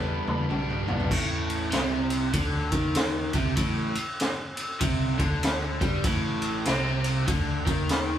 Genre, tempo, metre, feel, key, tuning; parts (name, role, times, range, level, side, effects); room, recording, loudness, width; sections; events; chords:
blues rock power trio and southern rock; 97 BPM; 4/4; swing 63% on 8ths; A minor; A4 = 440 Hz
octave-fuzz lead guitar; melody; 0.0-0.5 s; B4; -37 LUFS; left 1 dB; wah, distortion
overdriven electric guitar; riff; 0.0-8.2 s; G2 to D4; -28 LUFS; equal
fuzz picked electric bass; bass; 0.0-8.2 s; A1 to G2; -32 LUFS; equal; overdrive
raw garage drum kit; drums; 0.3-8.1 s; crash cymbal, kick drum, ride cymbal, snare drum, toms; -27 LUFS; equal
wet studio reverb, RT60 0.6 s; band playing live in one room; -24 LUFS; side -10 dB against mid
0.0-1.1 A section; 1.1-8.2 B section
drum fill 0.0-1.1
0.0 G; 1.1 Am